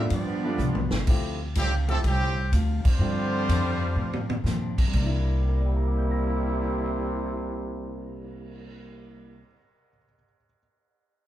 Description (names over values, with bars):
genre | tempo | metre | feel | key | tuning
jazz, big band swing | 124 BPM | 4/4 | swing 68% on 8ths | C mixolydian | A4 = 440 Hz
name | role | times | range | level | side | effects
clear trumpet section | melody | 0.0-4.4 s | G3 to D5 | -31 LUFS | right 1 dB | none
warm trombone section | second line | 0.0-9.4 s | A2 to E4 | -32 LUFS | right 1 dB | none
clear baby grand piano | accompaniment | 0.0-10.6 s | C3 to Bb6 | -35 LUFS | left 2 dB | none
upright bass | bass | 0.0-9.4 s | G1 to Bb2 | -26 LUFS | equal | none
picked steel-string acoustic guitar | accompaniment | 0.1-9.5 s | G2 to F4 | -36 LUFS | left 2 dB | none
swinging big-band drum kit | drums | 0.1-8.7 s | crash cymbal, cymbal swell, hi-hat, kick drum, ride cymbal, snare drum, toms | -27 LUFS | equal | none
bright trombone section | sustained chords | 0.4-1.0 s | G3 to B4 | -44 LUFS | right 1 dB | none
room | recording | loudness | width
moderate large studio reverb, RT60 0.8 s | band playing live in one room | -23 LUFS | side -12 dB against mid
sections
0.0-1.1 A section; 1.1-4.9 B section; 4.9-8.8 C section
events
drum fill 0.6-1.1, 4.0-4.5; band accent 2.8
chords
0.1 G7; 1.1 Dm11; 3.0 G7sus4; 4.9 C7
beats
0.11 0.59 | 1.07 1.55 2.04 2.52 | 3.00 3.49 3.97 4.45 | 4.93 5.42 5.90 6.38 | 6.87 7.35 7.83 8.31